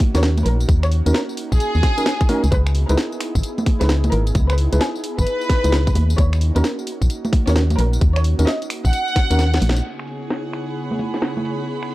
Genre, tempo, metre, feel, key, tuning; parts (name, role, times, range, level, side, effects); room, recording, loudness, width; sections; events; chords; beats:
UK garage, two-step garage; 131 BPM; 4/4; swing 64% on 16ths; C# dorian; A4 = 445 Hz
airy breathy pad; sustained chords; 0.0-11.9 s; C#3 to G#4; -29 LUFS; right 1 dB; chorus, sidechain pumping
electronic kick drum; drums; 0.0-9.3 s; -18 LUFS; equal
garage drum kit; drums; 0.0-11.9 s; congas, crash cymbal, finger snaps, hi-hat, snare drum, tambourine; -25 LUFS; equal; low-pass filter on hats, low-pass filter on perc, low-pass filter on snare, low-pass filter on cymbals
dark studio violin section; melody; 0.1-9.8 s; G#4 to F#5; -25 LUFS; equal
tine electric piano; stabs; 0.1-9.4 s; C#4 to B4; -24 LUFS; right 1 dB; analog delay
organ-like FM bass; bass; 0.1-9.8 s; G#1 to D#2; -17 LUFS; equal
dark studio string section; texture; 9.8-11.9 s; G#4 to B5; -32 LUFS; right 2 dB; sidechain pumping
little or no reverb; dry, gritty hardware recording, transformer saturation, cassette tape; -16 LUFS; side -17 dB against mid
0.0-9.8 A section; 9.8-11.9 B section
kick drops out 9.4-9.8; drum fill 9.4-9.8; band accent 9.7
0.0 D#m7; 2.5 C#m9; 6.0 D#m7; 9.8 C#m9
0.23 | 0.69 1.15 1.60 2.06 | 2.52 2.98 3.44 3.89 | 4.35 4.81 5.27 5.72 | 6.18 6.64 7.10 7.56 | 8.02 8.47 8.93 9.39 | 9.85 10.30 10.76 11.22 | 11.68